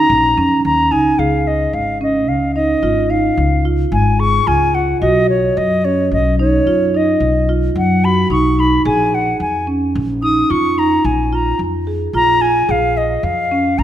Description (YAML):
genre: contemporary instrumental, chamber music in an uneven meter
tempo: 110 BPM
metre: 7/4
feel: straight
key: unclear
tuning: A4 = 442 Hz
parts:
  - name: concert flute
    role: melody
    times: 0.0-13.8 s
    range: Db5 to Eb6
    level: -16 LUFS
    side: left 1 dB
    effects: none
  - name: marimba with medium mallets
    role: arpeggios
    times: 0.0-13.8 s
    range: Db4 to Ab4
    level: -17 LUFS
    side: right 2 dB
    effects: none
  - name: upright bass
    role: bass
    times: 0.1-13.8 s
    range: Ab1 to F#2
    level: -19 LUFS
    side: left 1 dB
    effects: none
room: moderate scoring stage reverb, RT60 1.6 s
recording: none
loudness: -13 LUFS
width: side -11 dB against mid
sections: 0.0-1.2 A section; 1.2-13.8 B section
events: none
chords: 0.0 Eb7(no3); 1.2 Dbadd9; 5.0 B; 8.9 Bbm7